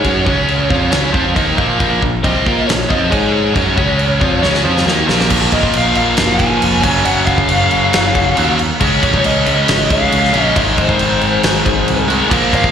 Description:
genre	hard rock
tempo	137 BPM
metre	4/4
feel	straight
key	Bb minor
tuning	A4 = 443 Hz
part	biting lead guitar	melody	0.0-12.7 s	C5 to Ab5	-18 LUFS	left 2 dB	overdrive, slapback echo, digital delay
part	biting overdriven guitar	riff	0.0-12.7 s	Gb2 to Bb4	-14 LUFS	equal	slapback echo
part	modern bright picked electric bass	bass	0.0-12.7 s	F1 to Bb2	-19 LUFS	equal	none
part	big rock drum kit	drums	0.0-12.7 s	crash cymbal, kick drum, snare drum	-17 LUFS	equal	none
room	light reverb, studio reverb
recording	live gig heard through the venue's PA, recital hall reverb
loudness	-11 LUFS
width	side -8 dB against mid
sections	0.0-5.3 A section; 5.3-12.7 B section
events	drum fill 4.4-5.3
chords	0.1 Gb5; 0.3 Db5; 0.7 Bbm; 3.1 Ab5; 3.6 Gb5; 3.8 Db5; 4.2 Bbm; 5.3 Bb5; 6.8 Gb5; 8.8 Db; 10.6 Ab

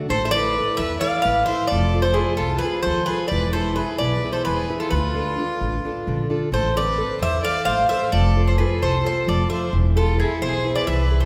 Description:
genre	greek folk, Greek bouzouki band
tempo	262 BPM (eighths)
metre	7/8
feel	straight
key	E phrygian dominant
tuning	A4 = 440 Hz
part	fingerpicked plugged-in steel-string acoustic guitar	accompaniment	0.0-11.3 s	B2 to C5	-28 LUFS	equal	none
part	Greek bouzouki	melody	0.1-11.3 s	G#4 to F5	-25 LUFS	equal	none
part	clear violin	second line	0.1-11.3 s	E4 to D5	-30 LUFS	equal	none
part	upright bass	bass	0.1-11.2 s	E1 to E2	-26 LUFS	equal	none
room	wet scoring stage reverb, RT60 1.9 s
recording	recorded in a church or concert hall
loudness	-21 LUFS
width	mono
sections	0.0-9.7 A section; 9.7-11.3 B section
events	none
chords	0.1 Asus2; 1.7 F; 3.3 E; 4.9 Dm; 6.5 Amadd9; 8.1 F; 9.7 E

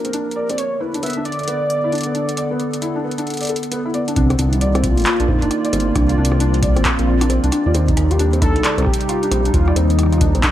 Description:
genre	IDM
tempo	134 BPM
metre	4/4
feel	swing 62% on 16ths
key	unclear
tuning	A4 = 440 Hz
part	warm velvety synth lead	melody	0.0-10.5 s	B3 to E5	-22 LUFS	equal	chorus, cassette tape, digital delay
part	warbly tape-like pad	sustained chords	0.0-10.5 s	C3 to D5	-24 LUFS	right 1 dB	chorus, built-in reverb, sidechain pumping
part	felt-muted upright piano	arpeggios	0.0-10.5 s	B3 to D5	-24 LUFS	left 1 dB	digital delay
part	booming analog drum machine	drums	0.0-10.5 s	handclaps, hi-hat, rim click	-24 LUFS	equal	none
part	dark detuned saw bass	bass	4.2-10.4 s	G1 to Eb2	-17 LUFS	equal	none
part	electronic kick drum	drums	4.2-10.5 s	none	-20 LUFS	equal	none
room	light reverb, digital ambience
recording	none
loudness	-15 LUFS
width	side -12 dB against mid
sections	0.0-4.2 A section; 4.2-10.5 B section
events	filter sweep on ambient pad 0.0-4.2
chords	0.0 Gm7; 0.6 Bm7; 4.2 Cm11; 7.7 Eb6

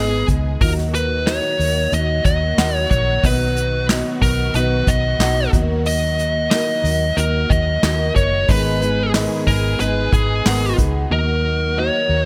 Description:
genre	piano-driven pop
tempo	91 BPM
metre	4/4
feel	straight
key	unclear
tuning	A4 = 444 Hz
part	fuzz lead guitar	melody	0.0-12.3 s	G#4 to D#5	-23 LUFS	equal	distortion
part	dark concert grand piano	accompaniment	0.0-12.3 s	G#2 to F#5	-27 LUFS	equal	analog chorus
part	warm studio string section	sustained chords	0.0-12.3 s	A#2 to G#4	-33 LUFS	equal	none
part	vintage muted fingered electric bass	bass	0.0-12.3 s	F#1 to D#2	-23 LUFS	equal	none
part	unplugged drum kit	drums	0.3-10.9 s	handclaps, hi-hat, kick drum, snare drum	-22 LUFS	equal	gated reverb
part	fingerpicked plugged-in steel-string acoustic guitar	riff	8.5-11.1 s	G#2 to B4	-28 LUFS	equal	none
room	small room ambience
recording	bright 1980s-style digital production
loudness	-18 LUFS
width	mono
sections	0.0-12.3 A section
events	none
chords	0.0 G#m; 0.6 D#m; 3.2 B; 5.5 D#m; 8.5 G#m; 11.1 D#m

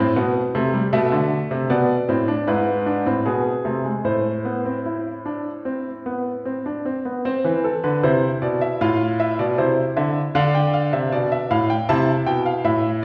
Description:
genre	classical, baroque-style 3-part fugue for grand piano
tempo	78 BPM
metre	4/4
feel	straight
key	A minor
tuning	A4 = 442 Hz
part	clear grand piano	solo	0.0-13.0 s	G#2 to A5	-21 LUFS	equal	none
room	wet recital hall reverb, RT60 1.3 s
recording	recorded in a church or concert hall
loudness	-21 LUFS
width	mono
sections	0.0-7.2 A section; 7.2-13.0 B section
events	none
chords	0.0 Am7; 0.9 Asus24; 2.5 E/G#; 4.0 Am; 7.2 Am (rootless); 8.8 F/A; 10.3 Am

